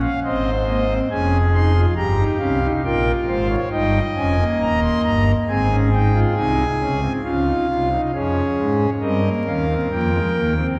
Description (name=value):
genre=classical, baroque-style 4-part fugue for pipe organ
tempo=68 BPM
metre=4/4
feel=straight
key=Db major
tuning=A4 = 440 Hz
part: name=pipe organ, foundations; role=solo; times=0.0-10.8 s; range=Eb1 to C6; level=-19 LUFS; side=equal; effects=none
room=wet church reverb, RT60 3.0 s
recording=vinyl crackle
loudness=-19 LUFS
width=mono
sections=0.0-7.3 A section; 7.3-10.8 B section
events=none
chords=0.2 Ab; 2.0 Gdim; 3.7 Eb7; 5.5 Ab; 7.3 Dbmaj7; 9.0 Gdim